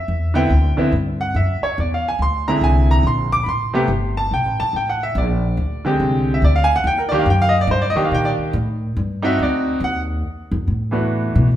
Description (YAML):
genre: jazz piano trio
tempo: 142 BPM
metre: 4/4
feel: swing 65% on 8ths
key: unclear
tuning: A4 = 440 Hz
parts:
  - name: clear baby grand piano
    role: melody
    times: 0.0-11.5 s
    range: C3 to D6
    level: -18 LUFS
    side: equal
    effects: none
  - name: upright bass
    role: bass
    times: 0.0-11.6 s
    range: G1 to B2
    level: -19 LUFS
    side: equal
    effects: none
room: wet large studio reverb, RT60 1.5 s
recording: band playing live in one room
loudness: -16 LUFS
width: side -11 dB against mid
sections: 0.0-10.2 A section; 10.2-11.6 A section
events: grand piano solo 0.0-10.2; upright bass solo 10.2-11.6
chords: 0.1 Cadd9 (rootless); 1.8 Eaug7; 3.5 Am7; 5.2 Bb13; 6.9 Ebmaj7; 8.5 A7(no3); 9.4 D7b9; 10.2 D69